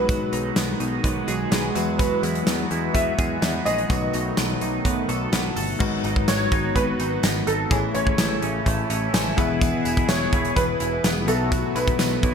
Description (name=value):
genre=1980s-style pop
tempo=126 BPM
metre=4/4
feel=straight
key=E major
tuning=A4 = 440 Hz
part: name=clear baby grand piano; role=melody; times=0.0-12.3 s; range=F#4 to E5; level=-27 LUFS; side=right 1 dB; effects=ensemble chorus, digital delay
part: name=bell-like tine electric piano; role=accompaniment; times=0.0-12.3 s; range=G#2 to G#5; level=-28 LUFS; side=left 5 dB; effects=medium stereo tremolo
part: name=phased analog pad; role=sustained chords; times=0.0-12.3 s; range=B2 to G#4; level=-29 LUFS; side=equal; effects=phaser, chorus
part: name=twelve-string electric guitar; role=riff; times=0.0-12.3 s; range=E3 to A4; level=-30 LUFS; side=right 6 dB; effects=lush chorus, digital delay
part: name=picked electric bass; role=bass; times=0.0-12.3 s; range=E1 to E2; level=-29 LUFS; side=right 1 dB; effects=none
part: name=modern studio drum kit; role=drums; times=0.1-12.3 s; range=crash cymbal, hi-hat, kick drum, snare drum, tambourine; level=-24 LUFS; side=equal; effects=gated reverb
part: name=tambourine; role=percussion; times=0.1-12.1 s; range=none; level=-40 LUFS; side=right 8 dB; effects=none
room=moderate lush hall reverb, RT60 1.7 s, small room ambience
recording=bright 1980s-style digital production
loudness=-20 LUFS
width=side -6 dB against mid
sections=0.0-5.8 A section; 5.8-12.3 B section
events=tine electric piano fill 8.9-9.6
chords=0.0 B6; 1.8 Eadd9; 3.9 B7; 5.8 G#m7; 7.7 Amaj7; 9.4 E; 11.3 B7sus4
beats=| 0.09 0.57 1.04 1.52 | 2.00 2.47 2.95 3.42 | 3.90 4.38 4.85 5.33 | 5.80 6.28 6.76 7.23 | 7.71 8.19 8.66 9.14 | 9.62 10.09 10.57 11.04 | 11.52 12.00